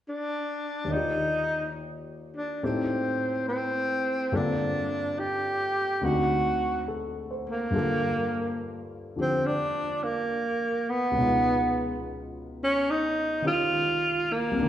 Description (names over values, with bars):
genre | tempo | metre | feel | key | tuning
jazz ballad | 70 BPM | 4/4 | swing 68% on 8ths | unclear | A4 = 439 Hz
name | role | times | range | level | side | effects
breathy tenor saxophone | melody | 0.1-14.7 s | Bb3 to G4 | -26 LUFS | right 1 dB | none
warm baby grand piano | accompaniment | 0.8-14.7 s | C2 to D5 | -31 LUFS | left 2 dB | none
room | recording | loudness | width
wet recital hall reverb, RT60 1.6 s | recorded in a church or concert hall | -25 LUFS | side -11 dB against mid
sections
0.9-7.7 A section; 7.7-14.7 B section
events
none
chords
0.0 N.C.; 0.9 Ebmaj7; 2.6 Am7b5; 4.3 Gm11; 6.0 D7b9; 7.7 Gm9; 11.2 C#9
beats
0.04 | 0.90 1.76 2.62 3.47 | 4.32 5.17 6.02 6.87 | 7.74 8.60 9.46 10.31 | 11.16 12.01 12.86 13.70 | 14.54